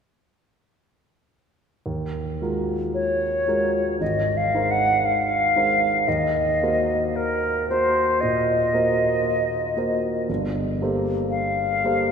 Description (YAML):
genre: classical, impressionist duo for flute and grand piano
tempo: 57 BPM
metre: 4/4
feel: rubato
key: Eb dorian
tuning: A4 = 440 Hz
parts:
  - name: warm concert grand piano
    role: accompaniment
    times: 1.9-12.1 s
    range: G1 to C5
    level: -24 LUFS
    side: right 1 dB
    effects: none
  - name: silver concert flute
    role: melody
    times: 2.9-12.1 s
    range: Bb4 to Gb5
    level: -21 LUFS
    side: equal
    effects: none
room: wet church reverb, RT60 3.1 s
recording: none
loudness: -20 LUFS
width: side -6 dB against mid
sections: 1.9-12.1 A section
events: none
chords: 1.9 Ebm11; 4.0 Abadd9; 6.1 Ebm6; 10.3 Gm11